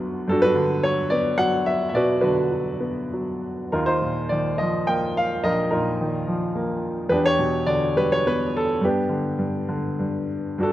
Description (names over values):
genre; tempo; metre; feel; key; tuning
classical, lyrical solo piano; 96-112 BPM; 3/4; rubato; unclear; A4 = 440 Hz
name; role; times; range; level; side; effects
clear baby grand piano; solo; 0.0-10.7 s; Bb1 to G5; -20 LUFS; equal; none
room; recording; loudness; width
light reverb; close, detailed microphones; -20 LUFS; side -14 dB against mid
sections
0.0-10.6 A section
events
none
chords
0.0 Gmaj7; 3.7 Ebsus2; 7.1 Em7; 8.8 G